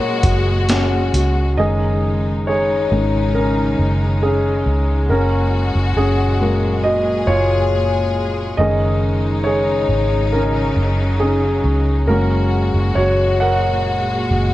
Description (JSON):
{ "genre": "pop ballad", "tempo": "68 BPM", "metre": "4/4", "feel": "straight", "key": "F# major", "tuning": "A4 = 440 Hz", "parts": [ { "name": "warm concert grand piano", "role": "accompaniment", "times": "0.0-14.5 s", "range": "D#3 to F#5", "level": "-18 LUFS", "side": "left 1 dB", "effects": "none" }, { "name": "clear studio string section", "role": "sustained chords", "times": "0.0-14.5 s", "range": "A#2 to G#4", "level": "-23 LUFS", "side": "left 1 dB", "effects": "none" }, { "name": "vintage muted fingered electric bass", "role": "bass", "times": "0.2-14.5 s", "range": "F#1 to C#2", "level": "-18 LUFS", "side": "equal", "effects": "none" }, { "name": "boom bap sampler-style drum kit", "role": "drums", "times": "0.2-1.3 s", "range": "hi-hat, kick drum, snare drum", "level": "-18 LUFS", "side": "equal", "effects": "none" } ], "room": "digital ambience", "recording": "worn, warbling old tape, cassette tape, warbly pitch drift", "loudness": "-15 LUFS", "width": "side -15 dB against mid", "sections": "0.0-1.6 A section; 1.6-14.5 B section", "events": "grand piano solo 1.6-14.5", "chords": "0.0 F#add9; 1.6 C#sus2/F#; 5.1 F#add9; 8.6 C#sus2/F#; 12.1 F#add9" }